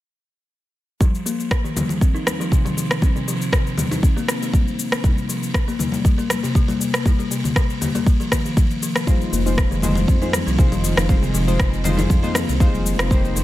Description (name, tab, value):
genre	afro house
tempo	119 BPM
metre	4/4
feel	swing 53% on 16ths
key	F minor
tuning	A4 = 439 Hz
part	buzzing kalimba	arpeggios	1.0-13.4 s	C3 to Eb4	-24 LUFS	left 1 dB	sidechain pumping, low-pass filter, digital delay
part	electronic cabasa and rim click	drums	1.0-13.4 s	none	-25 LUFS	left 1 dB	overdrive, studio ambience
part	electronic kick drum	drums	1.0-13.2 s	none	-17 LUFS	equal	studio ambience
part	congas	percussion	1.0-13.2 s	none	-28 LUFS	left 3 dB	none
part	warm analog keys	stabs	9.1-13.4 s	Ab3 to C5	-26 LUFS	left 1 dB	chorus, vintage 12-bit sampler grit, sidechain pumping, digital delay
part	dark detuned saw bass	bass	9.3-13.4 s	F1 to F2	-22 LUFS	equal	tube saturation, sidechain pumping
room	digital ambience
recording	none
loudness	-17 LUFS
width	side -15 dB against mid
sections	1.0-13.4 A section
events	none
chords	1.0 F7(no3); 5.0 Cm7; 9.1 Fm7